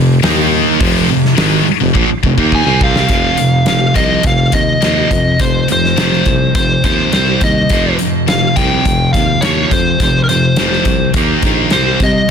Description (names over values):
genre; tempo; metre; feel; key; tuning
hard rock; 104 BPM; 4/4; straight; F minor; A4 = 439 Hz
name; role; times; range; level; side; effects
high-gain distorted guitar; riff; 0.0-12.3 s; F2 to Eb4; -16 LUFS; left 13 dB; distortion
sludgy distorted guitar; riff; 0.0-12.3 s; F2 to Eb4; -16 LUFS; right 11 dB; overdrive
mellow tuba; bass; 0.0-12.2 s; F1 to C3; -18 LUFS; equal; none
big rock drum kit; drums; 0.2-12.1 s; hi-hat, kick drum, snare drum; -17 LUFS; equal; none
biting lead guitar; melody; 2.5-12.3 s; Bb4 to Ab5; -16 LUFS; left 1 dB; overdrive, digital delay
room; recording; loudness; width
small room ambience; dense, heavily limited modern master; -10 LUFS; side -7 dB against mid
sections
0.0-3.1 A section; 3.1-12.3 B section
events
drum fill 2.0-3.1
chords
0.2 Eb5; 0.8 Fm; 3.1 F5; 7.1 C5; 7.7 F5; 11.2 Eb5; 11.7 C5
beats
0.23 | 0.80 1.38 1.95 2.53 | 3.10 3.68 4.25 4.83 | 5.41 5.98 6.56 7.13 | 7.71 8.28 8.86 9.43 | 10.00 10.58 11.15 11.72 | 12.30